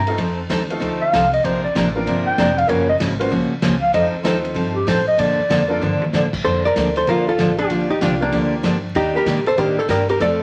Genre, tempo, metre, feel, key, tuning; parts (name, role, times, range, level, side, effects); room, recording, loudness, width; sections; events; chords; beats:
country, western swing; 192 BPM; 4/4; swing 63% on 8ths; Bb major; A4 = 440 Hz
breathy clarinet; second line; 0.0-5.8 s; G4 to Bb5; -21 LUFS; equal
upright bass; bass; 0.0-10.4 s; F1 to Bb2; -30 LUFS; equal
bright upright piano; accompaniment; 0.1-5.8, 8.2-9.8 s; A3 to C5; -27 LUFS; equal
vintage drum kit; drums; 0.1-10.3 s; crash cymbal, hi-hat, kick drum, ride cymbal, snare drum, toms; -31 LUFS; equal
picked steel-string acoustic guitar; accompaniment; 0.2-10.4 s; C3 to Bb4; -23 LUFS; equal
hollow-body jazz guitar; melody; 6.4-10.4 s; Bb3 to D5; -20 LUFS; equal
wet studio reverb, RT60 0.7 s; vinyl crackle; -18 LUFS; mono
0.0-6.4 A section; 6.4-10.4 B section
clarinet solo 0.0-6.4; drum fill 5.8-6.1
0.2 F7; 1.4 Bbadd9; 2.7 Gbmaj7; 3.9 F7; 5.2 Bbmaj7; 7.7 Gm7/Bb; 9.0 Ebmaj7
| 0.18 0.50 0.81 1.12 | 1.44 1.75 2.06 2.38 | 2.69 3.00 3.31 3.63 | 3.94 4.25 4.57 4.88 | 5.19 5.50 5.82 6.13 | 6.44 6.76 7.07 7.38 | 7.70 8.01 8.33 8.64 | 8.95 9.27 9.58 9.89 | 10.21